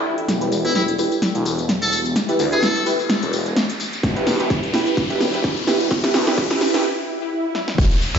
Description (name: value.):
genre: bass house.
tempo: 128 BPM.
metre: 4/4.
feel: swing 55% on 16ths.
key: E minor.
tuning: A4 = 439 Hz.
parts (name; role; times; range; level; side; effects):
swell, riser and downlifter; sound effects; 0.0-8.2 s; none; -28 LUFS; left 2 dB; none.
deep dark ambient pad; texture; 0.0-6.8 s; E4 to G5; -32 LUFS; left 1 dB; chorus, built-in reverb, sidechain pumping.
big-room dance drum kit; drums; 0.2-8.2 s; crash cymbal, finger snaps, hi-hat, snare drum, tambourine; -22 LUFS; equal; overdrive.
phased detuned saw bass; bass; 0.3-8.2 s; E1 to E2; -24 LUFS; equal; phaser, sidechain pumping, high-pass filter.
orchestra-hit-like synth stab; stabs; 0.4-6.8 s; E4 to B4; -22 LUFS; right 2 dB; built-in reverb, sidechain pumping, ping-pong delay.
trumpet with metal mute; melody; 0.6-2.9, 8.1-8.2 s; E4 to A4; -24 LUFS; equal; ping-pong delay.
electronic kick drum; drums; 4.0-7.9 s; none; -21 LUFS; equal; overdrive.
room: wet digital room reverb, RT60 1.1 s, digital ambience.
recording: played on a big sound system in a bare room, large studio reverb, high-pass filter, nothing above 7.7 kHz.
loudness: -17 LUFS.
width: side -7 dB against mid.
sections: 0.3-7.8 A section.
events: swell 0.0, 6.8-7.8; build-up 0.3-7.8; drum fill 0.3-6.8, 7.5; riser 0.3-6.8; filter sweep on synth stab 0.3-7.8; break 6.8-7.8.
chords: 0.3 Em.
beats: | 0.28 0.75 1.22 1.69 | 2.16 2.63 3.10 3.57 | 4.03 4.50 4.97 5.44 | 5.91 6.38 6.85 7.32 | 7.78.